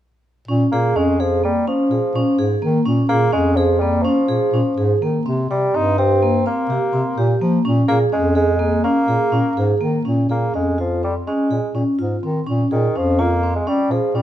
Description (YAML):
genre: contemporary instrumental, contemporary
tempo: 251 BPM (eighths)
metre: 5/8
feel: straight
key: Bb dorian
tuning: A4 = 440 Hz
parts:
  - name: vibraphone with soft mallets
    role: arpeggios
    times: 0.5-14.2 s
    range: Bb3 to Ab4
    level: -19 LUFS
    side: right 1 dB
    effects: none
  - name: mellow bass clarinet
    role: bass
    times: 0.5-14.2 s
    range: F2 to F3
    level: -20 LUFS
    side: equal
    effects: none
  - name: warm bassoon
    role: melody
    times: 0.7-14.2 s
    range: Eb3 to Eb4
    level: -20 LUFS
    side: left 1 dB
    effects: none
room: light reverb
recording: dark, warm production, faint mains hum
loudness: -16 LUFS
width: side -12 dB against mid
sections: 0.5-10.1 A section; 10.1-14.2 A section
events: none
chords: 0.5 Bbm7; 5.3 C5; 7.7 Bbm7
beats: | 0.48 0.72 0.96 1.20 1.44 | 1.67 1.91 2.15 2.39 2.62 | 2.86 3.10 3.34 3.58 3.81 | 4.05 4.29 4.53 4.78 5.02 | 5.26 5.50 5.74 5.98 6.22 | 6.46 6.70 6.94 7.18 7.41 | 7.65 7.89 8.13 8.37 8.61 | 8.84 9.08 9.32 9.57 9.81 | 10.05 10.30 10.54 10.78 11.02 | 11.27 11.51 11.75 11.99 12.23 | 12.47 12.71 12.95 13.18 13.42 | 13.66 13.90 14.14